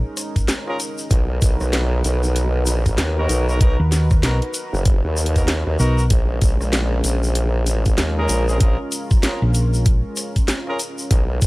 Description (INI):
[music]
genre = glitch hop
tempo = 96 BPM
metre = 4/4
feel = swing 61% on 16ths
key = Bb phrygian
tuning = A4 = 441 Hz
[part]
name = warm analog pad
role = sustained chords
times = 0.0-11.5 s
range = Ab3 to B4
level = -29 LUFS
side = equal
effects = chorus, sidechain pumping
[part]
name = drum and bass drum kit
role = drums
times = 0.2-11.5 s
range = hi-hat, rim click, snare drum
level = -24 LUFS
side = equal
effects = none
[part]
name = tube shaker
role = percussion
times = 0.2-11.5 s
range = none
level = -30 LUFS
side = left 2 dB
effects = none
[part]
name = electronic kick drum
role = drums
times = 0.4-11.5 s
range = none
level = -16 LUFS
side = equal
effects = none
[part]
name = warm horn section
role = stabs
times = 0.7-10.8 s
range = B3 to A#4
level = -27 LUFS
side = equal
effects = sidechain pumping, analog delay
[part]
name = formant-sweep wobble bass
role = bass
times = 1.1-11.5 s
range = F#1 to D#2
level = -19 LUFS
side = equal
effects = chorus, overdrive
[part]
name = hollow-body short-scale fingered electric bass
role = bass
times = 3.8-10.0 s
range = Bb1 to D#2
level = -17 LUFS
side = equal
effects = none
[sound]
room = little or no reverb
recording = dry, gritty hardware recording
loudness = -16 LUFS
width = side -21 dB against mid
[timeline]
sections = 0.0-11.5 A section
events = kick drops out 5.5-6.1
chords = 0.0 Bbm7; 1.1 Bmaj7; 6.1 Bbm7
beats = 0.48 | 1.11 1.73 2.36 2.98 | 3.61 4.23 4.86 5.48 | 6.11 6.73 7.36 7.98 | 8.61 9.23 9.86 10.48 | 11.11